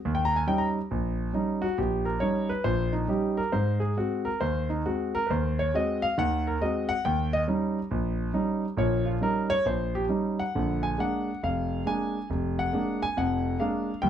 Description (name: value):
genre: solo jazz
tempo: 138 BPM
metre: 4/4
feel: swing 66% on 8ths, rubato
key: Eb mixolydian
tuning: A4 = 438 Hz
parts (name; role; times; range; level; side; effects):
- warm concert grand piano; solo; 0.1-14.1 s; F1 to Bb5; -25 LUFS; equal; none
room: moderate studio ambience, RT60 0.5 s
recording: none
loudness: -25 LUFS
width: side -9 dB against mid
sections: 0.0-14.1 A section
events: grand piano solo 0.0-14.1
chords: 0.0 Eb7; 3.5 Ab7; 7.0 Eb7; 10.5 Bb7